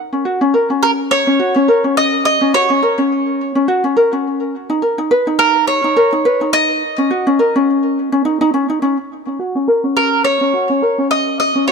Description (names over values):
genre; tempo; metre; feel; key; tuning
folktronica; 105 BPM; 4/4; swing 56% on 16ths; unclear; A4 = 438 Hz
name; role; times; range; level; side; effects
ukulele; arpeggios; 0.1-11.7 s; Db4 to B4; -14 LUFS; left 1 dB; low-pass filter, ping-pong delay
mandolin; melody; 0.8-11.7 s; Bb4 to Eb5; -15 LUFS; right 1 dB; none
room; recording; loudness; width
light reverb; none; -12 LUFS; side -5 dB against mid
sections
0.0-9.1 A section; 9.1-11.7 B section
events
filter sweep on ukulele 9.1-11.7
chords
0.0 Dbsus4; 4.5 Bmaj7; 6.8 Gb5 (rootless); 9.1 Dbsus2